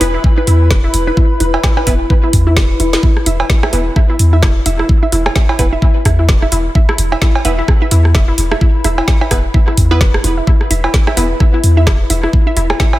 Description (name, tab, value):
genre	minimal techno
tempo	129 BPM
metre	4/4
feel	swing 58% on 16ths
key	unclear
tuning	A4 = 440 Hz
part	resonant blip pluck	riff	0.0-13.0 s	E4 to E5	-20 LUFS	equal	chorus, vintage 12-bit sampler grit, sidechain pumping, tape echo
part	wavetable chord stab	stabs	0.0-11.2 s	B3 to B4	-23 LUFS	right 2 dB	tape echo
part	punchy sub bass	bass	0.0-12.7 s	E1 to E2	-13 LUFS	equal	sidechain pumping
part	garage drum kit	drums	0.0-12.9 s	hi-hat, snare drum	-20 LUFS	equal	none
part	electronic bongos, cowbell and rim click	percussion	0.0-13.0 s	none	-20 LUFS	right 3 dB	tape echo
part	warbly tape-like pad	texture	0.0-13.0 s	E4 to B5	-23 LUFS	left 2 dB	chorus, built-in reverb, sidechain pumping
part	electronic kick drum	drums	0.2-12.9 s	none	-11 LUFS	equal	none
room	light reverb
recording	none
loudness	-10 LUFS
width	side -16 dB against mid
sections	0.0-13.0 A section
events	drum fill 2.6-3.0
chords	0.0 E5